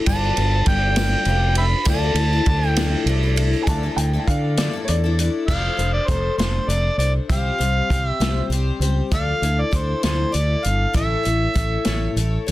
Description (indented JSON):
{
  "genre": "folk rock and heartland rock",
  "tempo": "66 BPM (dotted quarters)",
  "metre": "6/8",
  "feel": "straight",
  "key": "D dorian",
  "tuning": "A4 = 441 Hz",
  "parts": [
    { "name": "picked twelve-string acoustic guitar", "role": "accompaniment", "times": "0.0-12.5 s", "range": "A2 to C#5", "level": "-26 LUFS", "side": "left 5 dB", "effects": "none" },
    { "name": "overdriven harmonica", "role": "melody", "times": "0.1-12.1 s", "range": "C5 to B5", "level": "-23 LUFS", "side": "right 1 dB", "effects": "none" },
    { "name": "fingered electric bass", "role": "bass", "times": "0.1-12.5 s", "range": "F1 to D3", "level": "-21 LUFS", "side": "equal", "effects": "none" },
    { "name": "vintage drum kit", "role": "drums", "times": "0.1-12.5 s", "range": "crash cymbal, hi-hat, kick drum, ride cymbal, snare drum", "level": "-23 LUFS", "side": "equal", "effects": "none" },
    { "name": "tambourine", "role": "percussion", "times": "0.1-3.6 s", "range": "none", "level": "-40 LUFS", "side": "right 14 dB", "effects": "none" },
    { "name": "warm upright piano", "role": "second line", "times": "3.6-5.3 s", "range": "C#5 to A5", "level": "-28 LUFS", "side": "right 1 dB", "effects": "digital delay" }
  ],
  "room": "little or no reverb",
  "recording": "dense, heavily limited modern master",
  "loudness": "-18 LUFS",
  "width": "side -16 dB against mid",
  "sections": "0.0-3.7 A section; 3.7-5.5 B section; 5.5-12.5 C section",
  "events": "none",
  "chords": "0.1 G7; 1.9 Dmadd9; 5.5 F6; 7.3 Csus4; 9.1 Dmadd9; 10.9 A"
}